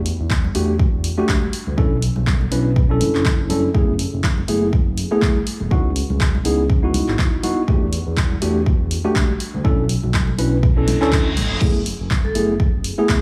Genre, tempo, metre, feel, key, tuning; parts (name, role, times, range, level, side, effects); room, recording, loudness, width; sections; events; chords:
deep house; 122 BPM; 4/4; swing 56% on 16ths; F# minor; A4 = 439 Hz
smooth synth bass; bass; 0.0-13.2 s; E1 to E2; -24 LUFS; equal; sidechain pumping
deep house drum kit; drums; 0.1-13.2 s; crash cymbal, handclaps, hi-hat; -29 LUFS; equal
electronic kick drum; drums; 0.3-13.2 s; -20 LUFS; equal
congas; percussion; 0.4-12.3 s; -32 LUFS; equal; sidechain pumping on perc
mellow tine electric piano; stabs; 0.5-13.2 s; A3 to B4; -24 LUFS; equal; sidechain pumping, digital delay
reverse cymbal; sound effects; 10.8-11.6 s; -30 LUFS; equal
vibraphone with medium hard mallets; melody; 12.2-12.4 s; A4; -29 LUFS; equal; digital delay
light reverb; studio reverb; -19 LUFS; mono
0.0-13.2 A section
reverse cymbal 10.8-11.6
0.0 Em11; 1.8 Bm11; 3.7 F#m11; 5.7 C#m11; 7.7 Em11; 9.6 Bm11; 11.6 F#m11